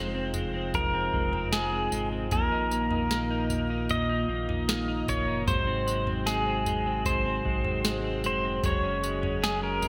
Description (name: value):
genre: dream pop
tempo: 76 BPM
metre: 4/4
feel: straight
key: unclear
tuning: A4 = 445 Hz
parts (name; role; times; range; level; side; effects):
- pedal steel guitar; melody; 0.0-9.9 s; Ab4 to Eb5; -32 LUFS; equal; delay
- mellow tonewheel organ; sustained chords; 0.0-9.9 s; Bb2 to Ab4; -37 LUFS; equal; slow rotary speaker
- clean electric guitar; arpeggios; 0.0-9.9 s; F2 to Eb4; -35 LUFS; equal; analog chorus, delay
- round analog bass; bass; 0.0-9.9 s; F1 to Bb1; -38 LUFS; equal; none
- booming analog drum machine; drums; 0.3-9.9 s; kick drum, snare drum, tambourine, toms; -34 LUFS; equal; gated reverb
room: moderate lush hall reverb, RT60 2.1 s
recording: bright 1980s-style digital production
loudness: -28 LUFS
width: mono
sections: 0.0-9.9 A section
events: none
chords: 0.0 Fm7; 2.3 Bbsus4; 5.5 Ab7; 8.6 Gbsus2